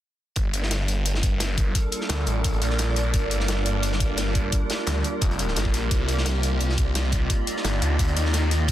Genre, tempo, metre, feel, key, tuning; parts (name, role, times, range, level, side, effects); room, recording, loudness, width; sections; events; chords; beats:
dark technical drum and bass; 173 BPM; 4/4; straight; G minor; A4 = 435 Hz
swarming drone; sustained chords; 1.0-8.7 s; G3 to Eb5; -31 LUFS; equal; built-in reverb, sidechain pumping
snarling distorted saw bass; bass; 0.4-8.7 s; F1 to Eb2; -24 LUFS; equal; distortion
crunchy breakbeat drum kit; drums; 0.4-8.7 s; hi-hat, snare drum; -33 LUFS; equal; high-pass filter on hats, high-pass filter on snare, high-pass filter on room
electronic hi-hat; drums; 0.4-8.7 s; -30 LUFS; left 2 dB
electronic kick drum; drums; 0.4-8.7 s; -24 LUFS; equal
ethereal airy pad; texture; 1.0-8.7 s; Bb3 to D5; -32 LUFS; right 1 dB; ensemble chorus, built-in reverb, sidechain pumping
light reverb; dense, heavily limited modern master; -21 LUFS; side -13 dB against mid
0.4-8.7 A section
0.4 Gm; 5.9 Cm
| 0.36 0.71 1.06 1.40 | 1.75 2.10 2.44 2.79 | 3.14 3.48 3.83 4.18 | 4.53 4.87 5.22 5.57 | 5.91 6.26 6.61 6.95 | 7.30 7.65 7.99 8.34 | 8.69